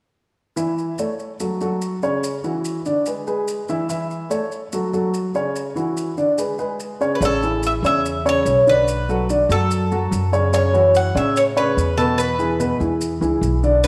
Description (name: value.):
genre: latin, Cuban son and guajira.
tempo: 145 BPM.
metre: 4/4.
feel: straight.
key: A major.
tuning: A4 = 440 Hz.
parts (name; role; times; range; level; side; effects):
dark baby grand piano; arpeggios; 0.6-13.9 s; B2 to E5; -23 LUFS; equal; none.
maracas; percussion; 0.6-13.9 s; none; -39 LUFS; equal; none.
Cuban tres; melody; 7.2-13.9 s; A4 to F#5; -22 LUFS; equal; none.
upright bass; bass; 7.2-13.9 s; A1 to A2; -24 LUFS; equal; none.
room: wet echo chamber reverb, RT60 1.7 s, studio ambience.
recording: none.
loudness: -20 LUFS.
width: mono.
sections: 0.6-7.2 A section; 7.2-13.9 B section.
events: none.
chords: 0.6 A; 1.4 F#m; 2.2 F#5; 3.1 E; 3.9 A; 4.7 F#m; 5.6 F#5; 6.4 G#madd11; 7.2 Amaj7; 8.9 Bm7; 10.5 F#m7; 12.2 E.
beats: | 0.57 0.99 1.40 1.82 | 2.23 2.65 3.06 3.48 | 3.90 4.31 4.73 5.14 | 5.56 5.97 6.39 6.80 | 7.22 7.63 8.04 8.46 | 8.87 9.29 9.70 10.12 | 10.53 10.94 11.36 11.77 | 12.19 12.60 13.01 13.43 | 13.84.